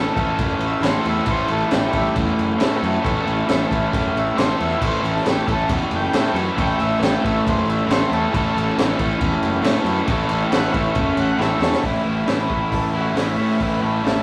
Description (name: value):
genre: garage rock duo or trio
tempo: 136 BPM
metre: 4/4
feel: straight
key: A major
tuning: A4 = 440 Hz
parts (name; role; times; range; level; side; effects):
- combo organ; melody; 0.0-14.2 s; E3 to G5; -28 LUFS; equal; none
- crunchy overdriven guitar; riff; 0.0-14.2 s; A2 to A4; -23 LUFS; equal; none
- fuzz picked electric bass; bass; 0.0-14.2 s; F#1 to A2; -28 LUFS; equal; overdrive, tube saturation
- crunchy breakbeat drum kit; drums; 0.2-14.2 s; crash cymbal, hi-hat, kick drum, snare drum; -25 LUFS; equal; none
room: moderate studio reverb, RT60 0.5 s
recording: rough rehearsal-room recording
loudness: -20 LUFS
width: mono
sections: 0.0-11.8 A section; 11.8-14.2 B section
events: transistor combo organ solo 0.0-11.8; drum fill 11.4-11.8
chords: 0.0 A